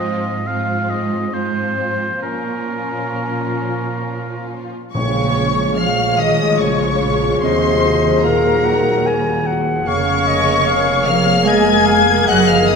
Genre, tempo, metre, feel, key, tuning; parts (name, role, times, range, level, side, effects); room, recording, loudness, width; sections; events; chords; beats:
cinematic; 64-75 BPM; 3/4; rubato; Bb minor; A4 = 444 Hz
muted studio violin section; melody; 0.0-12.8 s; F4 to Ab6; -22 LUFS; left 5 dB
muted studio violin section; second line; 0.0-12.8 s; C4 to Ab5; -22 LUFS; left 4 dB
warm oboe; second line; 0.0-4.5 s; Bb4 to F5; -24 LUFS; equal
muted symphonic viola section; accompaniment; 0.0-12.8 s; F3 to Ab4; -24 LUFS; right 2 dB
muted studio cello section; bass; 0.0-12.8 s; Ab2 to Ab3; -22 LUFS; right 5 dB
silver concert flute; second line; 4.9-12.8 s; Bb4 to Ab5; -23 LUFS; left 2 dB
mellow French horn section; sustained chords; 4.9-12.8 s; Eb3 to Ab4; -20 LUFS; left 3 dB
muted studio double bass section; bass; 4.9-12.8 s; F1 to Eb2; -23 LUFS; right 4 dB
timpani; percussion; 4.9-6.2 s; Bb2; -25 LUFS; right 2 dB
warm clarinet; second line; 5.8-12.8 s; Db5 to Ab5; -22 LUFS; left 2 dB
wet scoring stage reverb, RT60 1.8 s; -14 LUFS; side -5 dB against mid
0.0-4.9 A section; 4.9-12.8 A section
0.0 Fm7/Ab; 2.2 Bbm; 4.9 Bbm7; 7.4 Ebmadd9; 9.9 Bbm7/F
0.47 1.33 | 2.23 3.16 4.06 | 4.95 5.78 6.61 | 7.43 8.25 9.06 | 9.87 10.67 11.47 | 12.28